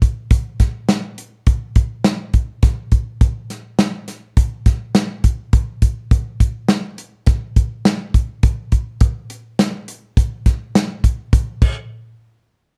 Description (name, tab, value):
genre	progressive instrumental, progressive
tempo	103 BPM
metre	5/4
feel	straight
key	none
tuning	none
part	natural country drum kit	drums	0.0-11.8 s	crash cymbal, hi-hat, kick drum, snare drum	-17 LUFS	equal	none
room	light reverb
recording	dark, warm production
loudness	-18 LUFS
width	mono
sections	0.0-11.9 A section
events	none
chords	none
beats	| 0.31 0.89 1.47 2.05 2.63 | 3.21 3.79 4.37 4.95 5.53 | 6.11 6.69 7.27 7.85 8.43 | 9.01 9.59 10.17 10.75 11.32